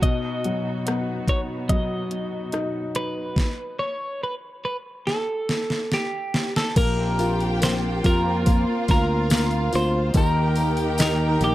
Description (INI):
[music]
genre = pop ballad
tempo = 72 BPM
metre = 4/4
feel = straight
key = Bb major from 6.8 s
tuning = A4 = 441 Hz
[part]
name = twelve-string electric guitar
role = melody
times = 0.0-11.5 s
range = G4 to D#5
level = -27 LUFS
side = right 1 dB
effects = none
[part]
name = clear grand piano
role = accompaniment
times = 0.0-11.5 s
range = B2 to F4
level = -27 LUFS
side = left 2 dB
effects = analog delay
[part]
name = muted studio string section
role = sustained chords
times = 0.0-11.5 s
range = B2 to Bb4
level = -30 LUFS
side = right 1 dB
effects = none
[part]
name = pop drum kit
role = drums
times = 0.0-11.5 s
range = crash cymbal, hi-hat, kick drum, rim click, snare drum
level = -23 LUFS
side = equal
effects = overdrive
[part]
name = warm studio violin section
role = second line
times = 6.8-11.5 s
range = F4 to G5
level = -31 LUFS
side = equal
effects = none
[part]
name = fretless electric bass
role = bass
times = 6.8-11.5 s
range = Bb1 to F2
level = -24 LUFS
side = equal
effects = none
[part]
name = tambourine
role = percussion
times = 6.8-11.5 s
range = none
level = -39 LUFS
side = left 6 dB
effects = none
[sound]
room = light reverb, small room ambience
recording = echo-heavy mix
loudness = -21 LUFS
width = side -15 dB against mid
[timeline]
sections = 0.0-6.8 A section; 6.8-11.5 B section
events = drum fill 5.0-6.8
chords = 0.0 B; 3.4 N.C.; 6.8 Bbsus2; 10.1 Eb